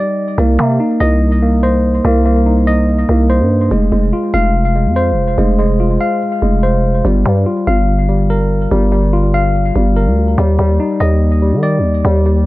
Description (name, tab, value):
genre	hip hop, drill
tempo	144 BPM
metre	4/4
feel	half-time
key	C minor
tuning	A4 = 437 Hz
part	tine electric piano	arpeggios	0.0-12.5 s	G3 to F5	-14 LUFS	left 1 dB	low-pass filter, tape echo
part	growling 808-style bass	bass	0.4-12.5 s	F1 to Eb3	-13 LUFS	equal	none
room	little or no reverb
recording	echo-heavy mix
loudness	-11 LUFS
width	side -18 dB against mid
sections	0.4-12.5 A section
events	break 0.0-0.4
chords	0.4 Cm7; 3.7 Fm; 7.0 Gm7; 10.4 Ebmaj7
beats	| 0.38 0.80 1.21 1.63 | 2.05 2.46 2.88 3.30 | 3.71 4.13 4.55 4.96 | 5.38 5.80 6.21 6.63 | 7.05 7.46 7.88 8.30 | 8.71 9.13 9.55 9.96 | 10.38 10.80 11.21 11.63 | 12.05